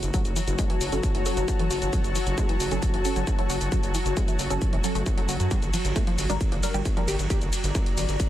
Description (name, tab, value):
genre	driving peak-time techno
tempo	134 BPM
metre	4/4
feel	straight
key	F# minor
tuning	A4 = 439 Hz
part	gritty driven synth bass	bass	0.0-8.2 s	E1 to F#2	-28 LUFS	equal	sidechain pumping
part	swarming drone	drone	0.0-8.3 s	F#3 to F#4	-34 LUFS	right 1 dB	built-in reverb, sidechain pumping
part	techno drum kit	drums	0.0-8.3 s	hi-hat, ride cymbal, shaker	-33 LUFS	left 1 dB	none
part	granular cloud pad	texture	0.0-8.3 s	F#4 to Bb5	-33 LUFS	left 4 dB	built-in reverb, sidechain pumping
part	tight sequenced synth	riff	0.1-7.2 s	E3 to G4	-34 LUFS	equal	chorus, phaser, tube saturation, sidechain pumping, digital delay
part	electronic kick drum	drums	0.1-8.3 s	none	-26 LUFS	equal	distortion
part	filtered dub chord stab	stabs	0.9-7.1 s	F#3 to Bb4	-35 LUFS	right 3 dB	phaser, lush chorus, sidechain pumping, tape echo
room	little or no reverb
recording	dense, heavily limited modern master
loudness	-23 LUFS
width	side -13 dB against mid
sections	0.0-8.3 A section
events	none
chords	0.0 F#m; 5.5 Gm